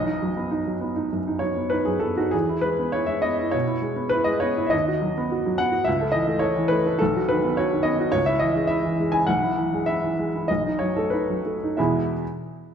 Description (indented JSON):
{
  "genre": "classical, romantic character piece for solo piano",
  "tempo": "88-109 BPM",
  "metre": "4/4",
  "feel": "rubato",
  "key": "E major",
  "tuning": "A4 = 439 Hz",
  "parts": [
    { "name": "clear upright piano", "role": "solo", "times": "0.0-12.2 s", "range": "B1 to G#5", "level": "-21 LUFS", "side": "equal", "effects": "none" }
  ],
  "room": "wet recital hall reverb, RT60 1.6 s",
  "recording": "dark, warm production",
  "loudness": "-21 LUFS",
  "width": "side -8 dB against mid",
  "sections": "0.0-11.8 A section",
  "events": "none",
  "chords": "0.0 B; 2.3 E; 4.7 B/D#; 5.9 A/C#; 7.0 B; 8.1 C#m; 9.3 E/B; 10.5 B7; 11.8 E",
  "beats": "0.50 1.10 1.71 | 2.33 2.94 3.54 4.13 | 4.73 5.31 5.87 6.43 | 7.00 7.57 8.13 8.70 | 9.28 9.87 10.49 11.12 | 11.78"
}